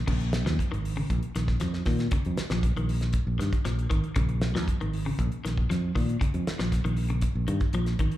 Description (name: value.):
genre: afrobeat.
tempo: 117 BPM.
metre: 4/4.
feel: straight.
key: Bb dorian.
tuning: A4 = 443 Hz.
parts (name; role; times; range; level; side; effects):
electric guitar at the edge of break-up; arpeggios; 0.0-8.2 s; Db3 to F3; -32 LUFS; left 3 dB; spring reverb, slapback echo.
fingered electric bass; bass; 0.1-8.1 s; Ab1 to Bb2; -28 LUFS; equal; none.
damped 70s drum kit; drums; 0.1-8.2 s; crash cymbal, hi-hat, kick drum, snare drum; -29 LUFS; equal; none.
room: studio ambience.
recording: live gig heard through the venue's PA, club reverb.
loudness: -25 LUFS.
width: side -14 dB against mid.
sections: 0.1-8.2 A section.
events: none.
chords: 0.1 Bbm.